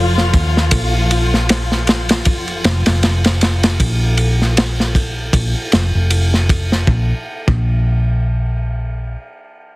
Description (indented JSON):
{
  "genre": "trip hop",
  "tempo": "78 BPM",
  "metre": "4/4",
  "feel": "swing 57% on 16ths",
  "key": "unclear",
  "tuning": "A4 = 440 Hz",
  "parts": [
    { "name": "dark studio string section", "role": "sustained chords", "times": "0.0-3.8 s", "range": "F3 to F4", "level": "-22 LUFS", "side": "left 3 dB", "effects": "none" },
    { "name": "hollow-body short-scale fingered electric bass", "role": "bass", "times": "0.0-9.1 s", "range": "F1 to Eb2", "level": "-16 LUFS", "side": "equal", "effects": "none" },
    { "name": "crunchy breakbeat drum kit", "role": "drums", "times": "0.2-7.7 s", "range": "kick drum, ride cymbal, snare drum", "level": "-16 LUFS", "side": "equal", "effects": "none" }
  ],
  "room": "little or no reverb",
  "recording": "heavily compressed radio sound, multiband compression",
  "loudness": "-13 LUFS",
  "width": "side -21 dB against mid",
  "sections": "0.0-6.9 A section; 6.9-9.8 B section",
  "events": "none",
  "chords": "0.0 Bbm (rootless); 0.7 Fsus4; 6.9 N.C."
}